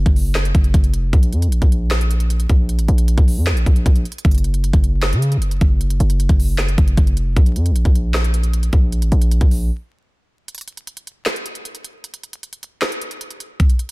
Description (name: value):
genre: hip hop, trap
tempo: 154 BPM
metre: 4/4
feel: half-time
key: Bb harmonic minor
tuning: A4 = 441 Hz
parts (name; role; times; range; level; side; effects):
- hard-hitting 808-style bass; bass; 0.0-9.7 s; F1 to Db3; -16 LUFS; equal; none
- trap drum kit; drums; 0.1-13.9 s; handclaps, hi-hat, kick drum, snare drum; -17 LUFS; equal; none
room: digital ambience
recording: dense, heavily limited modern master, vinyl crackle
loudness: -14 LUFS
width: side -22 dB against mid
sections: 0.0-10.5 A section; 10.5-13.9 B section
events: break 9.7-10.5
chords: none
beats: 0.35 0.74 | 1.13 1.52 1.91 2.30 | 2.69 3.08 3.47 3.86 | 4.25 4.64 5.03 5.42 | 5.81 6.20 6.59 6.97 | 7.37 7.75 8.14 8.53 | 8.92 9.31 9.70 10.09 | 10.48 10.87 11.26 11.65 | 12.04 12.43 12.82 13.21 | 13.60